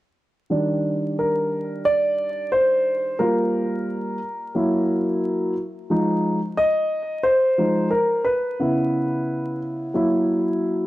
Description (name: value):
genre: hip hop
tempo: 89 BPM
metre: 4/4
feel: swing 60% on 16ths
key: unclear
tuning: A4 = 440 Hz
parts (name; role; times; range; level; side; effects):
- dark concert grand piano; solo; 0.5-10.9 s; Db3 to Eb5; -20 LUFS; equal; none
room: wet studio reverb, RT60 0.6 s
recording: vinyl crackle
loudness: -20 LUFS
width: side -16 dB against mid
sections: 0.5-10.9 A section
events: grand piano solo 0.5-10.9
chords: 0.5 Ebmaj7; 3.2 Gm7; 4.6 Gb7; 5.9 Fm7; 8.6 Dbm7; 9.9 Gb7